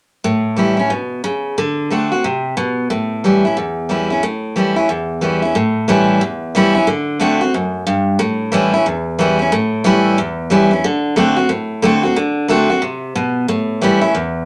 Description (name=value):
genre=rock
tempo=182 BPM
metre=4/4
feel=swing 63% on 8ths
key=A mixolydian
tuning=A4 = 440 Hz
part: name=picked steel-string acoustic guitar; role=solo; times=0.2-14.5 s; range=E2 to F#4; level=-16 LUFS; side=equal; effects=none
room=wet small room reverb, RT60 0.5 s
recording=none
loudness=-16 LUFS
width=mono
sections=0.2-5.6 A section; 5.6-14.5 B section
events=none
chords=0.2 A7; 1.6 D7; 2.9 A7; 6.9 D7; 8.2 A7; 10.8 D7; 13.5 A7